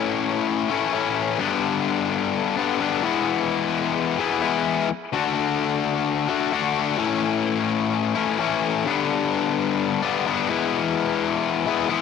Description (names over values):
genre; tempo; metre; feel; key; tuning
rock; 129 BPM; 4/4; straight; A major; A4 = 440 Hz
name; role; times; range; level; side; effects
distorted electric guitar; solo; 0.0-12.0 s; G2 to F#4; -20 LUFS; left 8 dB; overdrive
room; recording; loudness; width
light reverb; none; -20 LUFS; side -6 dB against mid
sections
0.0-12.0 A section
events
none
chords
0.0 A; 1.4 G; 3.0 E; 5.1 D; 7.0 A; 8.9 G; 10.5 E